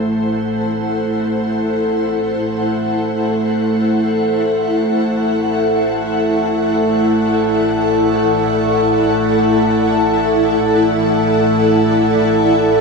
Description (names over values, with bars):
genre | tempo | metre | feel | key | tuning
ambient | free time | none | none | unclear | A4 = 440 Hz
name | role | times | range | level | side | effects
ethereal airy pad | sustained chords | 0.0-12.8 s | E4 to F#5 | -16 LUFS | equal | ensemble chorus, built-in reverb, tremolo
clear symphonic double bass section | bass | 0.0-12.8 s | A1 | -26 LUFS | left 5 dB | none
analog drone | drone | 0.0-12.8 s | A3 to A4 | -17 LUFS | right 1 dB | chorus
room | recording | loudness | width
wet concert hall reverb, RT60 2.2 s | small room ambience | -13 LUFS | side -4 dB against mid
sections
0.0-12.8 A section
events
fade-in on ambient pad 0.0-12.8; fade-in on double bass section 0.0-12.8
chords
0.0 Am; 4.9 Dadd9/A